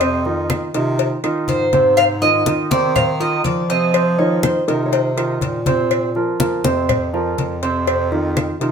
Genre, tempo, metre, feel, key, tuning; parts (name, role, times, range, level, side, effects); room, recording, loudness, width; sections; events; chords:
latin, Cuban son and guajira; 122 BPM; 4/4; straight; A4 = 437 Hz
Cuban tres; melody; 0.0-5.6 s; C5 to F5; -19 LUFS; equal
warm concert grand piano; arpeggios; 0.0-8.7 s; C3 to C5; -20 LUFS; right 3 dB
warm bass clarinet; bass; 0.0-8.7 s; F2 to F3; -22 LUFS; equal
claves; percussion; 0.0-8.6 s; -30 LUFS; right 9 dB
congas; percussion; 0.0-8.7 s; -23 LUFS; left 2 dB
cowbell; percussion; 0.0-8.7 s; -23 LUFS; left 10 dB
nylon-string guitar; second line; 4.2-5.9 s; Bb4 to Db5; -22 LUFS; left 2 dB
moderate studio reverb, RT60 0.9 s; minimal, uncompressed stereo recording; -15 LUFS; side -6 dB against mid
0.0-8.7 A section
0.0 F5; 2.0 Ab6; 3.9 F5; 5.9 Bbsus2; 7.9 Ab6 (rootless)